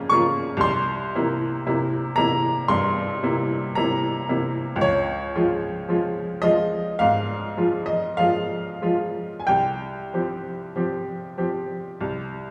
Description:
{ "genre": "classical, romantic nocturne for solo piano", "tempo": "46-58 BPM", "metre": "4/4", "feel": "rubato", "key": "unclear", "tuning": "A4 = 440 Hz", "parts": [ { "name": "bright upright piano", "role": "solo", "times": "0.0-12.5 s", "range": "C2 to Eb6", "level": "-24 LUFS", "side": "equal", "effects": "none" } ], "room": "wet recital hall reverb, RT60 1.6 s", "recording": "small room reverb", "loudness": "-24 LUFS", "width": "mono", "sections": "0.0-12.5 A section", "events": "none", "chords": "0.0 Bbm; 0.6 C7; 4.8 Db; 9.5 Csus4; 12.0 C5" }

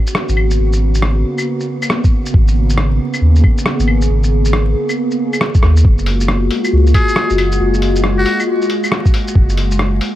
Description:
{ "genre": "future garage", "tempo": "137 BPM", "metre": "4/4", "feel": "swing 64% on 16ths", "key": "G# dorian", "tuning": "A4 = 444 Hz", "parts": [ { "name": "warbly tape-like pad", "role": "sustained chords", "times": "0.0-10.2 s", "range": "C#3 to G#4", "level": "-18 LUFS", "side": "left 1 dB", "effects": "chorus, built-in reverb, phaser, sidechain pumping" }, { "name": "lo-fi sampler-style drum kit", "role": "drums", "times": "0.1-10.1 s", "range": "claves, hi-hat, rim click, shaker", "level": "-20 LUFS", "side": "left 1 dB", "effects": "none" }, { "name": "warm sub bass", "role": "bass", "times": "0.3-10.0 s", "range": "F#1 to D#2", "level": "-13 LUFS", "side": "equal", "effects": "sidechain pumping" }, { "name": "electronic kick drum", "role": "drums", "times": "2.0-9.5 s", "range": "none", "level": "-12 LUFS", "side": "equal", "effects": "none" }, { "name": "trumpet with metal mute", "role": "melody", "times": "6.9-8.4 s", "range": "F#4 to G#4", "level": "-22 LUFS", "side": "equal", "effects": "analog delay" } ], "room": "light reverb", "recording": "vinyl crackle", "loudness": "-12 LUFS", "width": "side -14 dB against mid", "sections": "0.0-10.2 A section", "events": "none", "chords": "0.0 G#m11; 5.8 F#maj9" }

